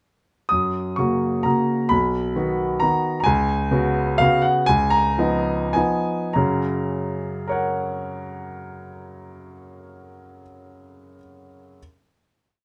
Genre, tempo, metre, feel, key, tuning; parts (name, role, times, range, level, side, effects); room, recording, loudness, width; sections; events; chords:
classical, piano waltz; 97-138 BPM; 3/4; rubato; F# major; A4 = 440 Hz
clear concert grand piano; solo; 0.5-11.8 s; B1 to D#6; -22 LUFS; equal
moderate small room reverb, RT60 0.5 s; -21 LUFS; mono
0.5-6.4 A section; 6.4-9.7 final chord
slowing down 2.6-6.4
0.5 F#; 1.9 B; 3.3 C#7sus4; 4.7 C#9; 6.4 F#